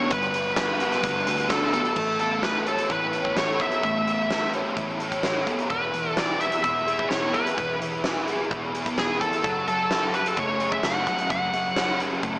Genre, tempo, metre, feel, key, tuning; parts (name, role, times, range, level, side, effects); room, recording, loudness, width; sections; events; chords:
rock, shoegaze and dream pop; 129 BPM; 4/4; straight; A major; A4 = 436 Hz
bluesy overdriven lead guitar; melody; 0.0-12.0 s; G#4 to F#5; -25 LUFS; equal; distortion, diffuse ambient delay
fuzz guitar; riff; 0.0-12.4 s; E3 to C#5; -27 LUFS; equal; distortion, analog chorus
vintage muted picked electric bass; bass; 0.0-12.4 s; E1 to D2; -38 LUFS; equal
huge arena drum kit; drums; 0.1-12.3 s; crash cymbal, hi-hat, kick drum, snare drum; -28 LUFS; equal
wet plate reverb, RT60 1.6 s, small room ambience; dreamy mix soaked in reverb, small speaker sound; -22 LUFS; side -24 dB against mid
0.0-2.0 A section; 2.0-12.4 B section
0.0 Gmaj7; 2.0 Aadd9; 5.7 E; 9.4 F#madd9